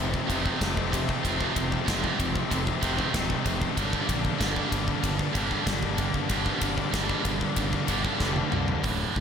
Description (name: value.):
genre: heavy metal.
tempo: 95 BPM.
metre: 4/4.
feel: straight.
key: unclear.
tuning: A4 = 436 Hz.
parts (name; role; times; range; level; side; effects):
heavy high-gain guitar; riff; 0.0-9.2 s; D2 to G3; -31 LUFS; right 9 dB; distortion.
high-gain distorted guitar; riff; 0.0-8.8 s; F2 to G4; -32 LUFS; left 1 dB; distortion, slapback echo.
tight distorted guitar; riff; 0.0-9.2 s; D2 to D3; -33 LUFS; left 9 dB; distortion.
fuzz fingered electric bass; bass; 0.0-9.2 s; D1 to C2; -33 LUFS; equal; overdrive.
big rock drum kit; drums; 0.1-9.2 s; hi-hat, kick drum, ride cymbal, snare drum, toms; -29 LUFS; equal; none.
room: light reverb, small room ambience.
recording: none.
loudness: -24 LUFS.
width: side -7 dB against mid.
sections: 0.0-8.8 A section.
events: drum fill 8.2-8.8.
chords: 0.0 F; 3.8 Gm.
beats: 0.61 | 1.24 1.87 2.50 3.14 | 3.77 4.40 5.04 5.67 | 6.30 6.94 7.57 8.21 | 8.85.